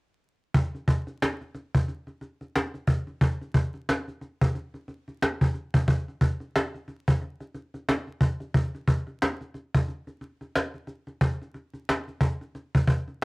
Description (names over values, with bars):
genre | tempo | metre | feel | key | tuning
hip hop | 90 BPM | 4/4 | swing 60% on 16ths | none | none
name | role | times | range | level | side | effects
cajon | drums | 0.5-13.1 s | none | -24 LUFS | equal | cassette tape
room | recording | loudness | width
light reverb | home recording on cassette, vinyl crackle | -25 LUFS | side -28 dB against mid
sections
0.5-11.2 A section; 11.2-13.2 B section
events
break 9.9-11.2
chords
none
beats
| 0.54 1.21 1.88 2.54 | 3.21 3.88 4.54 5.21 | 5.88 6.54 7.21 7.88 | 8.54 9.21 9.88 10.54 | 11.21 11.88 12.54